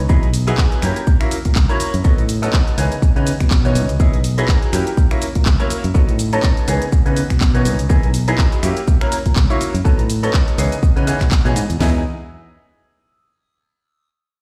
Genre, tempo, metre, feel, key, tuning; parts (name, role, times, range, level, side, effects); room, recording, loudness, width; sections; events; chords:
filtered disco house; 123 BPM; 4/4; swing 57% on 16ths; E major; A4 = 440 Hz
fingered electric bass; bass; 0.0-12.0 s; B1 to C#3; -22 LUFS; equal; sidechain pumping
bright grand piano; accompaniment; 0.1-12.0 s; E3 to C#5; -24 LUFS; equal; phaser, sidechain pumping
house drum kit; drums; 0.1-11.9 s; hi-hat, kick drum, snare drum, toms; -17 LUFS; equal; studio reverb
house drum kit; drums; 0.1-11.8 s; cabasa, finger snaps, handclaps, hi-hat; -29 LUFS; equal; sidechain pumping on hats, studio reverb, sidechain pumping on perc
digital ambience; played on a big sound system in a bare room, stone room reverb; -16 LUFS; mono
0.0-11.8 A section; 11.8-13.8 B section
drop 0.0-11.8
0.1 Emaj9; 0.8 F#7b9; 2.0 B9; 2.8 C#m9; 4.0 Emaj9; 4.7 F#7b9; 6.0 B9; 6.7 C#m9; 7.9 Emaj9; 8.6 F#7b9; 9.9 B9; 10.6 C#m9; 11.8 Emaj9